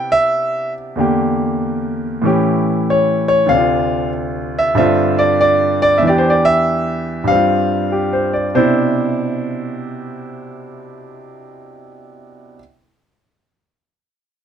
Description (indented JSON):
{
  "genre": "solo jazz",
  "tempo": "95 BPM",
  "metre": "4/4",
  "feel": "swing 67% on 8ths",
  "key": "C major",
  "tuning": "A4 = 439 Hz",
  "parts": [
    { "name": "clear grand piano", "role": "solo", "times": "0.0-12.6 s", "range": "D2 to G5", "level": "-14 LUFS", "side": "equal", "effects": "none" }
  ],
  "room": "light reverb",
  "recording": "none",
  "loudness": "-13 LUFS",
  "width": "side -8 dB against mid",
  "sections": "0.0-3.5 A section; 3.5-8.6 B section; 8.6-11.1 C section",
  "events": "none",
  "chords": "0.0 Cmaj9; 1.0 Em7b5; 2.2 A7; 3.5 Dm7; 4.8 G7sus4; 6.0 Em7; 7.3 G7sus4; 8.6 Cmaj9"
}